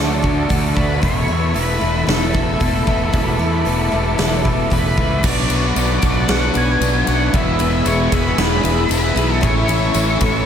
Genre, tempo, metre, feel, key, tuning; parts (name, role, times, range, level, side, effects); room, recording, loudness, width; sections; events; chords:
rock, shoegaze and dream pop; 114 BPM; 4/4; straight; A4 = 440 Hz
octave-fuzz lead guitar; melody; 0.0-10.5 s; A4 to G#5; -24 LUFS; equal; distortion, diffuse ambient delay
warm analog pad; sustained chords; 0.0-10.5 s; G#4 to E6; -27 LUFS; equal; chorus, tremolo
picked twelve-string acoustic guitar; arpeggios; 0.0-10.5 s; F#3 to A4; -29 LUFS; right 3 dB
overdriven semi-hollow guitar; riff; 0.0-10.5 s; E2 to F#4; -22 LUFS; left 8 dB; lush chorus
overdriven semi-hollow guitar; riff; 0.0-10.5 s; E2 to F#4; -24 LUFS; right 6 dB; reverse reverb
fuzz fingered electric bass; bass; 0.0-10.4 s; E1 to E2; -20 LUFS; equal; overdrive
huge arena drum kit; drums; 0.2-10.3 s; crash cymbal, hi-hat, kick drum, ride cymbal, snare drum; -21 LUFS; equal
tambourine; percussion; 5.8-10.1 s; -32 LUFS; left 15 dB
moderate lush hall reverb, RT60 1.9 s; dreamy mix soaked in reverb; -14 LUFS; side -8 dB against mid
0.0-5.2 A section; 5.2-10.5 B section
0.0 D; 1.0 Esus4; 5.2 Bmadd9; 7.3 E; 9.4 A